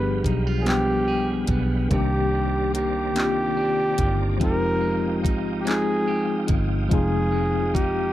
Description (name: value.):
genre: slow six-eight R&B.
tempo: 48 BPM (dotted quarters).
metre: 6/8.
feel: straight.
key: C minor.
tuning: A4 = 440 Hz.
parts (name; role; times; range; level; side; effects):
warm flugelhorn; melody; 0.0-8.1 s; G4 to B4; -26 LUFS; right 1 dB; none.
electric guitar at the edge of break-up; second line; 0.0-8.1 s; C3 to Ab4; -32 LUFS; right 7 dB; none.
tine electric piano; accompaniment; 0.0-8.1 s; Eb3 to G5; -26 LUFS; left 4 dB; medium stereo tremolo.
tonewheel organ; sustained chords; 0.0-8.1 s; G3 to Eb6; -37 LUFS; right 1 dB; chorus vibrato, fast rotary speaker.
vintage muted fingered electric bass; bass; 0.0-8.1 s; F1 to C2; -26 LUFS; equal; none.
smooth R&B drum kit; drums; 0.2-7.9 s; handclaps, hi-hat, kick drum; -24 LUFS; equal; none.
room: little or no reverb.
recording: dry, close 1970s-style studio recording.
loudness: -20 LUFS.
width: side -14 dB against mid.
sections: 0.0-8.1 A section.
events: none.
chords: 0.0 G7b9; 1.9 Cm9; 4.4 Fm9.